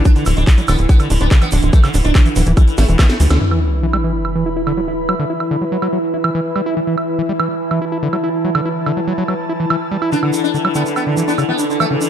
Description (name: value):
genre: psychedelic trance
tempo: 143 BPM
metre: 4/4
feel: straight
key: unclear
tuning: A4 = 440 Hz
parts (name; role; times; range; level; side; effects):
- evolving wavetable pad; sustained chords; 0.0-12.1 s; E3 to E4; -22 LUFS; left 1 dB; chorus, built-in reverb, sidechain pumping
- overdriven acid bass; riff; 0.0-12.0 s; C#3 to E4; -21 LUFS; equal; distortion, auto-pan, sidechain pumping, dub echo
- tight sequencer bass; bass; 0.0-3.4 s; D1 to D2; -14 LUFS; equal; none
- sitar; melody; 0.1-3.4, 10.1-12.1 s; D3 to D4; -22 LUFS; right 2 dB; phaser, sidechain pumping, ping-pong delay
- electronic kick drum; drums; 0.1-3.1 s; none; -10 LUFS; equal; none
- techno drum kit; drums; 0.1-11.9 s; handclaps, hi-hat, snare drum, woodblock; -23 LUFS; right 3 dB; none
- egg shaker; percussion; 0.1-3.4, 10.1-12.1 s; none; -31 LUFS; right 4 dB; none
- sub drop; sound effects; 3.4-5.1 s; none; -20 LUFS; equal; none
- airy breathy pad; texture; 3.4-12.1 s; D4 to B5; -23 LUFS; right 1 dB; chorus, sidechain pumping
room: light reverb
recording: dark, warm production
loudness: -13 LUFS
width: side -10 dB against mid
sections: 0.0-3.4 A section; 3.4-12.1 B section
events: drum fill 2.8-3.4; band accent 3.3; impact 3.4-5.1; filter sweep on ambient pad 3.4-12.1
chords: 0.0 D5; 3.4 E5; 10.1 D5